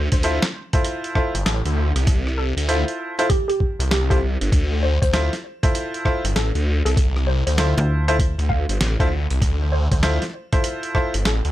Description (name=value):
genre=glitch hop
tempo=98 BPM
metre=4/4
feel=swing 63% on 16ths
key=D minor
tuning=A4 = 440 Hz
part: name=woody wave-folded pluck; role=melody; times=0.0-11.5 s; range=G4 to F5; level=-27 LUFS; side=equal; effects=lush chorus, digital delay
part: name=phased detuned saw bass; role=bass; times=0.0-11.5 s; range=G1 to D2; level=-20 LUFS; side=equal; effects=phaser
part: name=boom bap sampler-style drum kit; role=drums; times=0.1-11.5 s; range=hi-hat, rim click, snare drum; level=-26 LUFS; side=right 1 dB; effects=studio reverb
part: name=electronic kick drum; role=drums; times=0.1-11.1 s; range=none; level=-20 LUFS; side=equal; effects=studio reverb
part: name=bright baby grand piano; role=stabs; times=0.2-11.1 s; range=E4 to C5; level=-24 LUFS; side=equal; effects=sidechain pumping, digital delay
part: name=slap-like FM bass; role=bass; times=7.8-8.4 s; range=D2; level=-19 LUFS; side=equal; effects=none
room=little or no reverb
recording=none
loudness=-18 LUFS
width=side -14 dB against mid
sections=0.0-11.5 A section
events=none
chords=0.0 Dm9